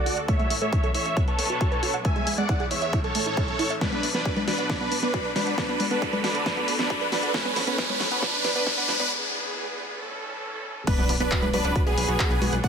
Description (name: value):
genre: uplifting trance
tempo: 136 BPM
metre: 4/4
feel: straight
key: B dorian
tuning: A4 = 440 Hz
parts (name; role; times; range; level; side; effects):
- big supersaw lead; melody; 0.0-12.7 s; B3 to G#5; -28 LUFS; right 1 dB; phaser, sidechain pumping, low-pass filter, digital delay
- bright studio string section; sustained chords; 0.0-12.7 s; D2 to B4; -34 LUFS; equal; sidechain pumping
- analog pluck; arpeggios; 0.0-12.7 s; G#3 to F#5; -32 LUFS; right 4 dB; chorus, sidechain pumping, digital delay
- riser and impact; sound effects; 0.0-12.6 s; none; -31 LUFS; equal; none
- big-room dance drum kit; drums; 0.1-12.7 s; congas, crash cymbal, handclaps, hi-hat, snare drum; -30 LUFS; left 2 dB; none
- electronic kick drum; drums; 0.3-12.7 s; none; -26 LUFS; equal; none
- plucky unison lead; second line; 10.9-12.7 s; G#4 to F#5; -31 LUFS; right 2 dB; sidechain pumping, digital delay
- plucky analog bass; bass; 11.0-12.6 s; B1 to C#2; -28 LUFS; equal; sidechain pumping
room: light reverb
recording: high-pass filter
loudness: -22 LUFS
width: side -7 dB against mid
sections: 0.0-10.9 A section; 10.9-12.7 B section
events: build-up 0.0-10.9; riser 0.0-9.1; filter sweep on synth pluck 0.0-10.9; filter sweep 0.0-10.9; drum fill 3.8-9.1; break 9.1-10.9; drop 10.9-12.7; impact 10.9-12.6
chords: 0.3 A; 1.2 Bm; 2.0 E; 2.9 A; 3.8 Bm; 5.6 D; 7.3 A; 8.2 Bm; 9.1 E; 10.0 A; 10.9 Bm